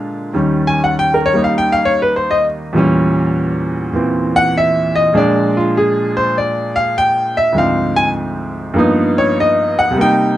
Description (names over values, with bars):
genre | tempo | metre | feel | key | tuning
solo jazz | 100 BPM | 4/4 | swing 67% on 8ths | unclear | A4 = 436 Hz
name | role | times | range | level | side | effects
clear baby grand piano | solo | 0.0-10.4 s | D2 to Ab5 | -12 LUFS | equal | none
room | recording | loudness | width
light reverb | none | -12 LUFS | side -13 dB against mid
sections
0.0-10.4 A section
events
grand piano solo 0.0-10.4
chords
0.3 Eb7; 2.7 Edim7; 5.1 Bb7; 7.6 Dm7b5; 8.8 G7alt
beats
| 0.33 0.93 1.53 2.14 | 2.74 3.34 3.94 4.54 | 5.14 5.75 6.35 6.95 | 7.55 8.15 8.76 9.36 | 9.96